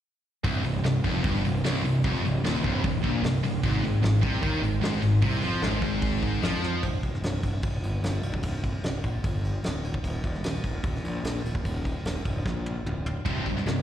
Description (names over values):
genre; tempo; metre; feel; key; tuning
heavy metal; 150 BPM; 4/4; straight; C minor; A4 = 440 Hz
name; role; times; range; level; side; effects
heavy high-gain guitar; riff; 0.4-6.8, 13.3-13.8 s; C2 to F3; -29 LUFS; right 8 dB; distortion, slapback echo
scooped high-gain guitar; riff; 0.4-6.8, 13.3-13.8 s; C2 to F3; -28 LUFS; left 6 dB; distortion
fuzz picked electric bass; bass; 0.4-13.8 s; C1 to F2; -28 LUFS; equal; overdrive
soft brush drum kit; drums; 0.4-13.8 s; crash cymbal, hi-hat, kick drum, ride cymbal, snare drum, toms; -31 LUFS; equal; none
room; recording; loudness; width
small room ambience; live gig heard through the venue's PA, recital hall reverb; -24 LUFS; side -10 dB against mid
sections
0.4-6.8 A section; 6.8-13.8 B section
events
drum fill 6.6, 12.5-13.3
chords
0.4 Cm; 3.6 Ab5; 6.8 C5; 10.0 Eb5; 13.3 C5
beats
| 0.44 0.84 1.24 1.64 | 2.04 2.44 2.84 3.23 | 3.63 4.03 4.43 4.83 | 5.23 5.63 6.03 6.43 | 6.83 7.23 7.63 8.03 | 8.43 8.83 9.24 9.64 | 10.04 10.44 10.85 11.25 | 11.65 12.05 12.45 12.86 | 13.26 13.66